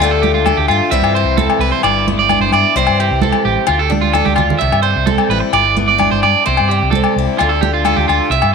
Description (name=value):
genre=highlife guitar band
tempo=130 BPM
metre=4/4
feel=straight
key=C major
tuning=A4 = 440 Hz
part: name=picked steel-string acoustic guitar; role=accompaniment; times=0.0-8.5 s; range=G2 to F4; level=-20 LUFS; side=left 13 dB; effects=none
part: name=electric guitar at the edge of break-up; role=arpeggios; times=0.0-8.5 s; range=F4 to E5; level=-15 LUFS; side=right 9 dB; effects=tape echo
part: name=hollow-body short-scale fingered electric bass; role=bass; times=0.0-8.5 s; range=G1 to G2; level=-18 LUFS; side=equal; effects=none
part: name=congas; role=percussion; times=0.0-8.4 s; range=none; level=-20 LUFS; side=right 10 dB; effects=none
part: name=agogo bells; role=percussion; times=0.5-8.5 s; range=none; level=-19 LUFS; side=left 13 dB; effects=none
room=moderate plate reverb, RT60 3.3 s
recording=1960s-style stereo with parts hard left and right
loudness=-11 LUFS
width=side -5 dB against mid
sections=0.0-8.5 A section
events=drum fill 4.3-4.6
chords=0.0 Dm; 0.9 C; 1.8 G6; 2.8 C; 3.7 Dm; 4.6 C; 5.5 G6; 6.5 C; 7.4 Dm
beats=0.00 0.46 | 0.92 1.38 1.84 2.30 | 2.76 3.22 3.68 4.14 | 4.61 5.07 5.53 5.99 | 6.45 6.92 7.38 7.84 | 8.30